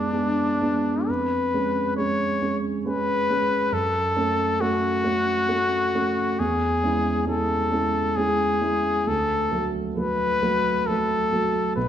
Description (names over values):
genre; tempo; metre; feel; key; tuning
classical, romantic duo for trumpet and grand piano; 67 BPM; 3/4; rubato; unclear; A4 = 440 Hz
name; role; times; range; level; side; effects
clear trumpet; melody; 0.0-11.9 s; D4 to C#5; -23 LUFS; left 3 dB; none
warm grand piano; accompaniment; 0.0-11.9 s; B1 to F#4; -25 LUFS; right 2 dB; none
room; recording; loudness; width
wet recital hall reverb, RT60 1.3 s; none; -21 LUFS; side -10 dB against mid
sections
0.0-11.9 A section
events
none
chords
0.0 G#m7b5/F#; 1.1 C#7/E#; 3.7 F#m; 6.4 C#m/E; 9.1 D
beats
0.13 | 1.08 1.97 2.86 | 3.73 4.61 5.49 | 6.40 7.28 8.18 | 9.08 9.98 10.87 | 11.76